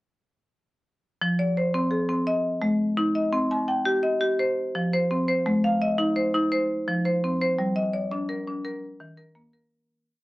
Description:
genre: southern african traditional, mbira-style interlocking cycle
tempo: 113 BPM (dotted quarters)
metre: 12/8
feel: straight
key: F equiheptatonic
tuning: A4 = 440 Hz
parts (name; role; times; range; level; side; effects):
- marimba with hard mallets; solo; 1.2-9.9 s; Eb3+29c to Ab5+43c; -22 LUFS; equal; none
room: light reverb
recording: none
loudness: -22 LUFS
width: side -19 dB against mid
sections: 1.2-9.7 A section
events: fade-out 7.6-9.7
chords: 1.2 Fm; 2.3 Ab5; 3.3 Cm; 4.4 F5; 5.5 Ab; 6.5 F5; 7.6 Gm; 8.7 Eb5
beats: | 1.21 1.74 2.27 2.80 | 3.33 3.86 4.39 4.92 | 5.46 5.99 6.52 7.05 | 7.59 8.12 8.65 9.18

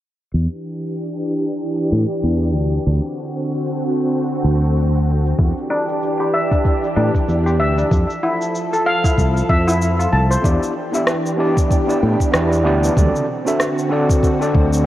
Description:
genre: sunset chillout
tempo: 95 BPM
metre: 4/4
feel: swing 57% on 16ths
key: E minor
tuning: A4 = 440 Hz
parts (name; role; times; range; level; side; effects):
- soft string machine; sustained chords; 0.6-14.9 s; D3 to A4; -21 LUFS; equal; ensemble chorus
- fretless electric bass; bass; 0.3-14.9 s; C2 to A2; -17 LUFS; equal; analog chorus
- deep house drum kit; drums; 0.3-14.8 s; rim click, shaker, toms; -24 LUFS; equal; none
- electronic kick drum; drums; 5.4-14.7 s; none; -17 LUFS; equal; none
- steel pan; arpeggios; 5.7-10.4 s; D4 to A5; -20 LUFS; left 1 dB; tape echo
- overdriven tine electric piano; accompaniment; 10.4-14.8 s; B3 to E5; -19 LUFS; equal; fast tremolo, auto-pan, tape echo
room: moderate lush hall reverb, RT60 2.5 s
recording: worn, warbling old tape, cassette tape, warbly pitch drift, low-pass filter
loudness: -15 LUFS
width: side -13 dB against mid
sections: 0.3-10.4 A section; 10.4-14.9 B section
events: filter sweep on fretless electric bass 0.3-10.4; filter sweep 0.3-10.4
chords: 0.3 Em7; 2.9 D7; 5.4 Em7; 7.9 Fmaj7; 10.4 Em7; 13.0 D7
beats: | 0.34 0.97 1.60 2.23 | 2.86 3.50 4.13 4.76 | 5.39 6.02 6.65 7.29 | 7.92 8.55 9.18 9.81 | 10.44 11.07 11.71 12.34 | 12.97 13.60 14.23

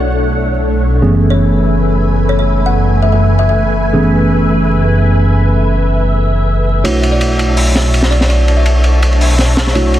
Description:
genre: drum and bass, jungle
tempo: 165 BPM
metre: 4/4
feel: swing 54% on 16ths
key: B dorian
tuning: A4 = 438 Hz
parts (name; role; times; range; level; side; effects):
- soft string machine; sustained chords; 0.0-10.0 s; A3 to A5; -18 LUFS; left 1 dB; phaser, ensemble chorus
- tine electric piano; stabs; 0.0-10.0 s; E3 to C#5; -16 LUFS; right 2 dB; vintage 12-bit sampler grit, low-pass filter, dub echo
- dark detuned saw bass; bass; 0.0-10.0 s; F#1 to B1; -12 LUFS; equal; tube saturation
- kalimba; melody; 1.3-3.5, 7.1-9.1 s; C#5 to F#5; -21 LUFS; left 3 dB; vintage 12-bit sampler grit, dub echo
- crunchy breakbeat drum kit; drums; 6.8-10.0 s; hi-hat, ride cymbal, snare drum; -16 LUFS; equal; none
room: light reverb, small room reverb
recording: vinyl crackle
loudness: -10 LUFS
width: side -12 dB against mid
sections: 0.0-10.0 A section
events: filter sweep on tine electric piano 0.0-10.0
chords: 0.0 Bm11; 1.0 F#m11; 6.8 Bm11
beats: 0.30 0.66 | 1.02 1.39 1.75 2.12 | 2.48 2.84 3.21 3.57 | 3.93 4.30 4.66 5.02 | 5.39 5.75 6.12 6.48 | 6.84 7.21 7.57 7.93 | 8.30 8.66 9.02 9.39 | 9.75

